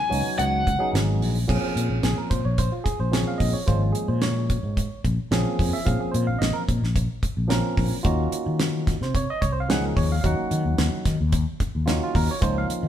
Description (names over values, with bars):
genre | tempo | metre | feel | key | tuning
electric jazz fusion | 110 BPM | 4/4 | straight | Bb minor | A4 = 442 Hz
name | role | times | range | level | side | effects
lead guitar through a small cranked amp | melody | 0.0-0.9 s | Gb5 to Ab5 | -25 LUFS | left 1 dB | overdrive
barky tine electric piano | accompaniment | 0.1-12.9 s | F3 to Gb5 | -27 LUFS | right 2 dB | none
sustaining fretless electric bass | bass | 0.1-12.9 s | Ab1 to Eb3 | -24 LUFS | left 1 dB | none
damped 70s drum kit | drums | 0.1-12.8 s | crash cymbal, hi-hat, kick drum, snare drum | -26 LUFS | equal | none
room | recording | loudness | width
moderate stone room reverb, RT60 1.2 s | band playing live in one room | -21 LUFS | side -10 dB against mid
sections
0.0-1.5 A section; 1.5-12.9 B section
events
none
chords
0.0 Db9sus4; 1.5 Bbm9; 8.0 Ebm9